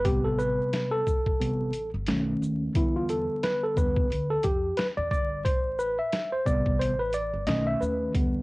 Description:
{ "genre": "hip hop, jazz-hop", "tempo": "89 BPM", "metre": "4/4", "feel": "swing 58% on 16ths", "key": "A minor", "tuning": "A4 = 439 Hz", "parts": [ { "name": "mellow tine electric piano", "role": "accompaniment", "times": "0.0-8.4 s", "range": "C3 to E5", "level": "-26 LUFS", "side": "equal", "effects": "medium stereo tremolo" }, { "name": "upright bass", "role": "bass", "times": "0.0-8.4 s", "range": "G1 to F2", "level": "-34 LUFS", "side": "equal", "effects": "none" }, { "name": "boom bap sampler-style drum kit", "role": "drums", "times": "0.1-8.3 s", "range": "hi-hat, kick drum, shaker, snare drum", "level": "-28 LUFS", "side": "equal", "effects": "cassette tape" } ], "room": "moderate small room reverb, RT60 0.5 s", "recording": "home recording on cassette, vinyl crackle, nothing above 10.7 kHz", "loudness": "-24 LUFS", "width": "side -23 dB against mid", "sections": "0.0-8.4 A section", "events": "tine electric piano solo 0.0-8.4", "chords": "0.1 Am9; 2.1 B7; 2.8 Em7; 5.4 Am9; 7.5 B7", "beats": "| 0.06 0.73 1.40 2.08 | 2.75 3.43 4.10 4.78 | 5.45 6.12 6.80 7.47 | 8.14" }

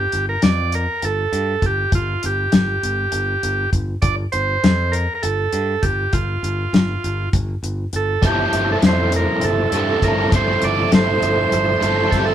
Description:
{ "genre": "psychedelic rock", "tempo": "200 BPM (eighths)", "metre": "7/8", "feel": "straight", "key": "G dorian", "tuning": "A4 = 439 Hz", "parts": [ { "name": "combo organ", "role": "melody", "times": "0.0-12.3 s", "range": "F4 to D5", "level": "-21 LUFS", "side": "right 3 dB", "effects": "none" }, { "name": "modern bright picked electric bass", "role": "bass", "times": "0.0-12.3 s", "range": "G1 to G2", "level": "-23 LUFS", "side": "equal", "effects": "none" }, { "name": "damped 70s drum kit", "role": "drums", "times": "0.1-12.3 s", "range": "hi-hat, kick drum, snare drum", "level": "-18 LUFS", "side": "left 2 dB", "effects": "none" }, { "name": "ensemble organ-string", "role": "sustained chords", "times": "8.2-12.3 s", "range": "A4 to E6", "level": "-27 LUFS", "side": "right 5 dB", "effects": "ensemble chorus" }, { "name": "biting overdriven guitar", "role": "riff", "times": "8.2-12.3 s", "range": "G3 to A4", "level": "-20 LUFS", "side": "equal", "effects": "rotary speaker" } ], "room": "light reverb", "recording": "band playing live in one room", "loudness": "-16 LUFS", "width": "side -10 dB against mid", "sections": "0.0-12.3 A section", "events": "none", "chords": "0.0 G7sus2; 8.2 Am/G", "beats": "0.13 0.43 0.73 1.03 1.33 1.63 | 1.93 2.23 2.54 2.83 3.14 3.44 3.74 | 4.04 4.34 4.64 4.94 5.24 5.54 5.84 | 6.14 6.44 6.74 7.04 7.34 7.64 7.94 | 8.23 8.54 8.84 9.13 9.43 9.73 10.03 | 10.33 10.63 10.93 11.23 11.53 11.83 12.13" }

